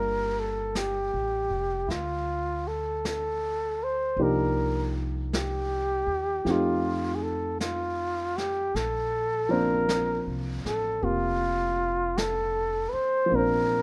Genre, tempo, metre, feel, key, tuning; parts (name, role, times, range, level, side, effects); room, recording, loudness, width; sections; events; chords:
jazz ballad; 52 BPM; 4/4; swing 66% on 8ths; Bb major; A4 = 440 Hz
mellow flugelhorn; melody; 0.0-13.8 s; E4 to C5; -30 LUFS; equal
dark baby grand piano; accompaniment; 0.0-13.8 s; F3 to C5; -32 LUFS; equal
upright bass; bass; 0.0-13.8 s; F1 to F2; -37 LUFS; equal
vintage brush drum kit; drums; 0.8-13.8 s; brushed snare drum, hi-hat, snare drum; -40 LUFS; equal
small room ambience; rough home demo mix; -28 LUFS; mono
0.0-13.8 A section
0.0 Gm9; 4.2 Cm11; 6.5 F7; 8.7 Bbmaj9